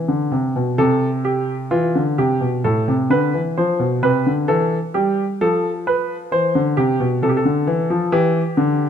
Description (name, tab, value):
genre	classical, baroque-style two-part invention for grand piano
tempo	66 BPM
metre	4/4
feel	straight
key	A minor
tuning	A4 = 440 Hz
part	warm baby grand piano	solo	0.0-8.9 s	A2 to C5	-16 LUFS	equal	none
room	moderate recital hall reverb, RT60 1.6 s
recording	close, detailed microphones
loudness	-16 LUFS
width	side -8 dB against mid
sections	0.8-8.9 A section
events	none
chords	0.0 Am; 2.6 D5/A; 4.5 A5/E; 6.3 Am; 8.1 Em